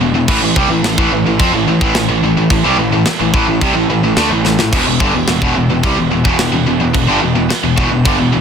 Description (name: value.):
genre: heavy metal.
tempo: 108 BPM.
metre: 4/4.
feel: straight.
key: unclear.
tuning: A4 = 440 Hz.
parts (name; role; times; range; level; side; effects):
pipe organ, full organ; sustained chords; 0.0-8.4 s; E3 to E5; -29 LUFS; equal; none.
distorted electric guitar; riff; 0.0-8.4 s; E2 to C4; -18 LUFS; equal; overdrive.
tight distorted guitar; riff; 0.0-8.4 s; E2 to C4; -18 LUFS; left 10 dB; distortion.
tight distorted guitar; riff; 0.0-8.4 s; E2 to C4; -18 LUFS; right 11 dB; distortion.
fuzz picked electric bass; bass; 0.0-8.4 s; E1 to F2; -19 LUFS; equal; overdrive.
tight metal drum kit; drums; 0.3-8.2 s; china cymbal, crash cymbal, kick drum, snare drum; -17 LUFS; right 1 dB; soft clipping on kick.
room: little or no reverb.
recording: dense, heavily limited modern master.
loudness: -11 LUFS.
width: side -7 dB against mid.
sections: 0.0-8.4 A section.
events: drum fill 4.4.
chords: 0.3 A5; 4.7 Em.